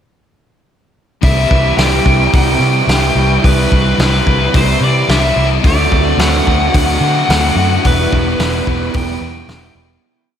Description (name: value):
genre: rock, shoegaze and dream pop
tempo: 109 BPM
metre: 4/4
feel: straight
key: C lydian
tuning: A4 = 440 Hz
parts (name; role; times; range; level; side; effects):
- nasal lead guitar with a parked wah; melody; 1.2-9.7 s; B4 to G5; -17 LUFS; equal; overdrive, analog delay
- crunchy overdriven guitar; riff; 1.2-10.0 s; E2 to F#4; -18 LUFS; left 6 dB; wide subtle chorus
- overdriven electric guitar; riff; 1.2-10.0 s; E2 to F#4; -20 LUFS; right 7 dB; reverse reverb
- vintage muted fingered electric bass; bass; 1.2-10.0 s; E1 to D3; -16 LUFS; equal; none
- loose indie drum kit; drums; 1.2-9.6 s; hi-hat, kick drum, snare drum; -16 LUFS; equal; none
room: wet lush hall reverb, RT60 1.7 s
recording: dreamy mix soaked in reverb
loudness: -10 LUFS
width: side -9 dB against mid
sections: 1.2-10.0 verse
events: fade-out 7.8-10.0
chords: 1.2 Cmaj7; 5.6 D7; 7.8 Em